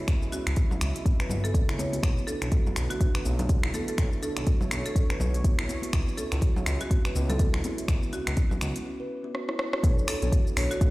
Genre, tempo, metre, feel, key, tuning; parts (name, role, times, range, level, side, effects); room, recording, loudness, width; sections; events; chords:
afro house; 123 BPM; 4/4; swing 59% on 16ths; B minor; A4 = 440 Hz
warm analog pad; sustained chords; 0.0-10.9 s; C#3 to C#5; -40 LUFS; equal; chorus, sidechain pumping
kalimba; arpeggios; 0.0-10.9 s; B3 to B4; -36 LUFS; right 1 dB; sidechain pumping, tape echo
smooth synth bass; bass; 0.1-10.7 s; G1 to C#2; -29 LUFS; equal; sidechain pumping
afro-pop drum kit; drums; 0.1-10.9 s; finger snaps, hi-hat, rim click, shaker; -34 LUFS; equal
electronic kick drum; drums; 0.1-10.9 s; -24 LUFS; equal
congas; percussion; 0.1-8.8 s; -37 LUFS; equal
buzzing marimba with hard mallets; melody; 0.3-10.8 s; F#4 to C#5; -37 LUFS; right 1 dB; tape echo
deep mellow chord stab; stabs; 9.8-10.9 s; B3 to C#5; -33 LUFS; left 2 dB; chorus, sidechain pumping
little or no reverb; played on a big sound system in a bare room, large studio reverb; -24 LUFS; side -19 dB against mid
0.0-9.8 A section; 9.8-10.9 B section
break 8.9-9.8; drum fill 9.3-9.8; drop 9.8-10.9
0.0 C#m7b5; 2.0 Bm9; 5.9 C#m7; 9.8 Bm9